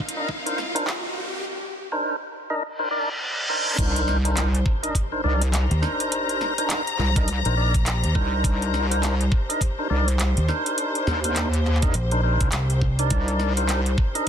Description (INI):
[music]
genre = glitch hop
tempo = 103 BPM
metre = 4/4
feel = swing 60% on 16ths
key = C minor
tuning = A4 = 441 Hz
[part]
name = riser, reverse cymbal and impact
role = sound effects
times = 0.0-6.1 s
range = none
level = -30 LUFS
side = equal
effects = none
[part]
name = rich studio string section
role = texture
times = 0.0-14.3 s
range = C4 to Bb5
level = -31 LUFS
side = left 3 dB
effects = sidechain pumping
[part]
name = drum and bass drum kit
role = drums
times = 0.1-14.2 s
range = crash cymbal, handclaps, hi-hat, snare drum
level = -28 LUFS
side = equal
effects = none
[part]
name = tonewheel organ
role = stabs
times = 0.2-14.3 s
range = D4 to Eb5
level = -26 LUFS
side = equal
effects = slow rotary speaker, sidechain pumping, low-pass filter, dub echo
[part]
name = electronic kick drum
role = drums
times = 0.3-14.1 s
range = none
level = -23 LUFS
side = equal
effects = none
[part]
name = wobble bass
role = bass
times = 3.8-14.0 s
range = C2 to Eb2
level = -22 LUFS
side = equal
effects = chorus, overdrive
[part]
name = overdriven fingered electric bass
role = bass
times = 5.7-13.1 s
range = Bb1 to Eb2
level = -22 LUFS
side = equal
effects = none
[sound]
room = little or no reverb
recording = dense, heavily limited modern master, high-pass filter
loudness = -21 LUFS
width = side -8 dB against mid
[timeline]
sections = 0.0-3.8 A section; 3.8-14.3 B section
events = build-up 0.0-3.8; riser 0.0-1.5; reverse cymbal 2.8-3.8; drop 3.8-14.3; impact 3.8-6.1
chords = 0.0 Cm9